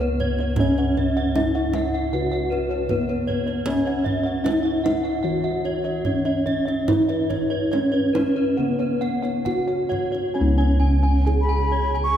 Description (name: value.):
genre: Javanese gamelan.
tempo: 66-78 BPM.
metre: 4/4.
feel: straight.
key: C# slendro.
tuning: A4 = 440 Hz.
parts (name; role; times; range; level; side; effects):
gamelan-type bronze metallophone; melody; 0.0-12.2 s; B3-25c to G#4; -23 LUFS; equal; none.
gamelan-type bossed gongs; arpeggios; 0.0-12.2 s; B4-25c to G#5; -30 LUFS; left 3 dB; none.
gamelan-type bronze metallophone; arpeggios; 0.0-12.2 s; B4-25c to G#5; -30 LUFS; right 2 dB; none.
gamelan-type bossed gongs; bass; 0.0-12.2 s; C#2 to E4-45c; -24 LUFS; equal; none.
kendang; percussion; 0.0-12.1 s; none; -30 LUFS; right 1 dB; none.
bansuri; second line; 11.4-12.2 s; B5-23c to C#6; -23 LUFS; left 2 dB; none.
room: wet cathedral reverb, RT60 6.5 s.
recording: recorded in a church or concert hall.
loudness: -19 LUFS.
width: side -10 dB against mid.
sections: 0.0-10.4 A section; 10.4-12.2 B section.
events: none.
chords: none.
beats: | 0.59 1.36 2.13 2.90 | 3.67 4.45 5.24 6.05 | 6.87 7.72 8.58 9.46 | 10.36 11.26.